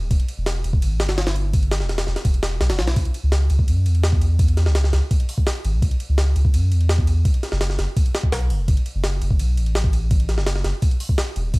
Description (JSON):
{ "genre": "drum and bass, jungle", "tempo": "168 BPM", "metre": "4/4", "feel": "straight", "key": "C# phrygian", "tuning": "A4 = 442 Hz", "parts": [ { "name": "soft dub sub bass", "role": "bass", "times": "0.0-11.6 s", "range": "D1 to F#2", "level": "-19 LUFS", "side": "equal", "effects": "none" }, { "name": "jungle sampler-style drum kit", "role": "drums", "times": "0.1-11.6 s", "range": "hi-hat, kick drum, ride cymbal, snare drum", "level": "-21 LUFS", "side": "equal", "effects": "none" } ], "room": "little or no reverb", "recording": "vinyl crackle", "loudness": "-17 LUFS", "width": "side -25 dB against mid", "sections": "0.0-11.6 A section", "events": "none", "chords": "none" }